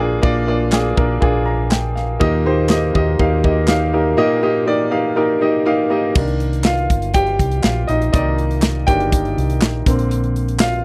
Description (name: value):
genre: piano-driven pop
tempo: 122 BPM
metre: 4/4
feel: straight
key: unclear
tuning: A4 = 440 Hz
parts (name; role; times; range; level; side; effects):
- clear upright piano; accompaniment; 0.0-10.8 s; Bb2 to Bb5; -20 LUFS; equal; none
- hollow-body short-scale fingered electric bass; bass; 0.0-10.8 s; G1 to Eb2; -22 LUFS; equal; none
- modern studio drum kit; drums; 0.2-10.8 s; crash cymbal, handclaps, hi-hat, kick drum, snare drum; -19 LUFS; equal; none
- tambourine; percussion; 10.6-10.7 s; none; -37 LUFS; equal; none
room: little or no reverb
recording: dry, close 1970s-style studio recording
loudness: -17 LUFS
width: mono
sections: 0.0-6.2 A section; 6.2-10.8 B section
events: upright piano solo 6.2-10.8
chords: 0.0 Bb; 2.2 Eb; 6.2 Cm7; 9.9 Bbadd9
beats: | 0.23 0.73 1.22 1.71 | 2.21 2.70 3.20 3.69 | 4.18 4.68 5.17 5.67 | 6.16 6.65 7.15 7.64 | 8.13 8.63 9.12 9.62 | 10.11 10.60